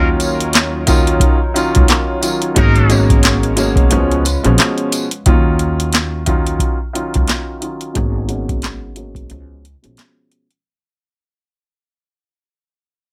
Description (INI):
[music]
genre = hip hop, boom-bap hip-hop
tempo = 89 BPM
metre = 4/4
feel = swing 59% on 16ths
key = Eb minor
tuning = A4 = 440 Hz
[part]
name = warm upright piano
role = accompaniment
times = 0.0-10.5 s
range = Cb3 to F4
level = -21 LUFS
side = equal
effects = cassette tape, high-pass filter, low-pass filter
[part]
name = hollow soft pad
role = sustained chords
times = 0.0-5.3 s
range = Cb3 to Db5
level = -27 LUFS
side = equal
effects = chorus, high-pass filter, low-pass filter
[part]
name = muted trumpet section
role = stabs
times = 0.0-3.0 s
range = Gb3 to Bb4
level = -26 LUFS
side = equal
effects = high-pass filter, low-pass filter, delay
[part]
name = upright bass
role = bass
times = 0.0-10.0 s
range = Ab1 to Eb2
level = -20 LUFS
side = equal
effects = none
[part]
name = booming analog drum machine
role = drums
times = 0.2-10.6 s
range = handclaps, hi-hat, kick drum, snare drum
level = -17 LUFS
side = equal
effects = none
[part]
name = tambourine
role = percussion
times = 0.2-5.1 s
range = none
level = -27 LUFS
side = equal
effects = none
[sound]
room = little or no reverb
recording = none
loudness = -15 LUFS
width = mono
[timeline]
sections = 0.0-5.3 A section; 5.3-10.7 B section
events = fade-out 5.3-10.7; filter sweep on upright piano 5.3-10.7; break 9.3-10.7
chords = 0.0 Ebm9; 2.6 Abm11; 3.9 Db7; 5.3 Ebm9; 8.0 Abm11; 9.3 Db7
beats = 0.54 1.22 1.89 | 2.56 3.24 3.91 4.59 | 5.26 5.93 6.61 7.28 | 7.96 8.63 9.30 9.98